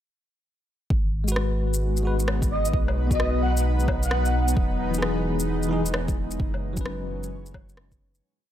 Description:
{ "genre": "future garage", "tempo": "131 BPM", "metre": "4/4", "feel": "swing 63% on 16ths", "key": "G# minor", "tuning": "A4 = 440 Hz", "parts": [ { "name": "granular cloud pad", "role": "sustained chords", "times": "1.7-8.2 s", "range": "E3 to D#5", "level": "-30 LUFS", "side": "equal", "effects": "built-in reverb, sidechain pumping" }, { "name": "warm sub bass", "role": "bass", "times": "0.9-8.2 s", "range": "E1 to B1", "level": "-26 LUFS", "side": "equal", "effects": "sidechain pumping" }, { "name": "electronic kick drum", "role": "drums", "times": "0.9-8.0 s", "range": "none", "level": "-26 LUFS", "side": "equal", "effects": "none" }, { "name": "bell-like tine electric piano", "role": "accompaniment", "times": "1.2-8.2 s", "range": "E3 to D#5", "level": "-31 LUFS", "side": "left 3 dB", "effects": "medium stereo tremolo, vintage 12-bit sampler grit, sidechain pumping, dub echo" }, { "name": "electronic shaker, rim click and woodblock", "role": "drums", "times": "1.3-8.2 s", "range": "none", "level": "-31 LUFS", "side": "left 1 dB", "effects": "none" }, { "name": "breathy flute-like synth lead", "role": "melody", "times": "2.5-4.5 s", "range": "D#5 to F#5", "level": "-30 LUFS", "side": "right 1 dB", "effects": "ensemble chorus, dub echo" } ], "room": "light reverb, digital ambience", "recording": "none", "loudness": "-22 LUFS", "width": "side -11 dB against mid", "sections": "0.9-8.2 groove", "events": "fade-out 5.8-8.2", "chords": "0.9 G#m7; 2.7 B; 4.6 Emaj7; 6.4 F#sus4", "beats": "| 0.91 1.36 1.82 2.28 | 2.74 3.20 3.65 4.11 | 4.57 5.03 5.49 5.95 | 6.40 6.86 7.32 7.78" }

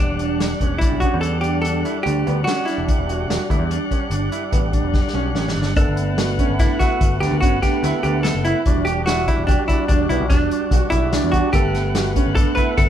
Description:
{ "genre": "progressive instrumental, band music in an uneven meter", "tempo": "145 BPM", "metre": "7/4", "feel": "straight", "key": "E dorian", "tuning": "A4 = 440 Hz", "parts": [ { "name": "hollow-body jazz guitar", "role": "melody", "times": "0.0-12.9 s", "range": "D4 to B4", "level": "-23 LUFS", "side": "right 1 dB", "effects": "none" }, { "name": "tonewheel organ", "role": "accompaniment", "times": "0.0-12.9 s", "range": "G3 to F#5", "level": "-26 LUFS", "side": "left 1 dB", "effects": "overdrive, slow rotary speaker" }, { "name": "picked electric bass", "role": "bass", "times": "0.0-12.9 s", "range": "E1 to E2", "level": "-23 LUFS", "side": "equal", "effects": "none" }, { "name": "bright baby grand piano", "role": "arpeggios", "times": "0.2-12.8 s", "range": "B3 to A4", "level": "-25 LUFS", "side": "right 4 dB", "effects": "none" }, { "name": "vintage drum kit", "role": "drums", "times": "0.2-12.9 s", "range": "hi-hat, kick drum, snare drum", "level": "-20 LUFS", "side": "equal", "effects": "none" } ], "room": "light reverb", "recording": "band playing live in one room", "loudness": "-17 LUFS", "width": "side -10 dB against mid", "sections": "0.0-5.8 A section; 5.8-12.9 B section", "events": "drum fill 4.9-5.8", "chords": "0.0 Em7; 5.8 Gmaj9; 8.7 Em7; 11.5 Gmaj9", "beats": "0.41 0.82 1.23 1.65 2.06 2.47 | 2.88 3.30 3.71 4.12 4.54 4.95 5.36 | 5.77 6.19 6.60 7.01 7.42 7.83 8.25 | 8.66 9.07 9.48 9.90 10.31 10.72 11.13 | 11.55 11.96 12.37 12.78" }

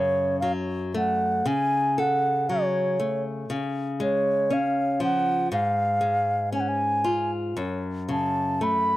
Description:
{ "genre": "fado-style ballad", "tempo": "58 BPM", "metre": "2/4", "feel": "rubato", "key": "F# harmonic minor", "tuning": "A4 = 440 Hz", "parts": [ { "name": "mellow baroque flute", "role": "melody", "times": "0.0-9.0 s", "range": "C#5 to B5", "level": "-24 LUFS", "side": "right 1 dB", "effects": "none" }, { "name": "nylon-string guitar", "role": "accompaniment", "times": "0.0-9.0 s", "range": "F#2 to A4", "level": "-27 LUFS", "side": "left 2 dB", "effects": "none" } ], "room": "small room ambience", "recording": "dry, close 1970s-style studio recording", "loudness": "-22 LUFS", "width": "side -16 dB against mid", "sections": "0.0-9.0 A section", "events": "none", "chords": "0.0 F#m; 3.5 C#; 7.6 F#m", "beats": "0.40 | 1.44 2.47 | 3.48 4.49 | 5.50 6.52 | 7.56 8.61" }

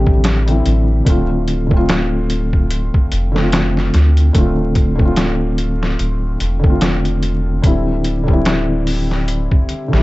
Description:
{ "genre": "trip hop", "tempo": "73 BPM", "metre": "4/4", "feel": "swing 57% on 16ths", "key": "D minor", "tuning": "A4 = 440 Hz", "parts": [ { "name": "felt-muted upright piano", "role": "accompaniment", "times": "0.0-10.0 s", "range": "D3 to G4", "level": "-18 LUFS", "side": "equal", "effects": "harmonic tremolo, vintage 12-bit sampler grit, tape echo" }, { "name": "soft dub sub bass", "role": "bass", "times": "0.0-10.0 s", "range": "D1 to D2", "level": "-17 LUFS", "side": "equal", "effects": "none" }, { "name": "trip hop sampler-style drum kit", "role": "drums", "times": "0.1-10.0 s", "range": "hi-hat, kick drum, snare drum", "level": "-16 LUFS", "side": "equal", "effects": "none" } ], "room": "little or no reverb", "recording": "dark, warm production, vinyl crackle, nothing above 7.9 kHz", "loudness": "-13 LUFS", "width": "side -19 dB against mid", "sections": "0.0-10.0 A section", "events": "none", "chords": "0.0 Cadd9; 1.1 Dm7; 7.6 Cadd9/D", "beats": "0.24 | 1.06 1.89 2.71 3.53 | 4.35 5.17 6.00 6.82 | 7.64 8.46 9.28" }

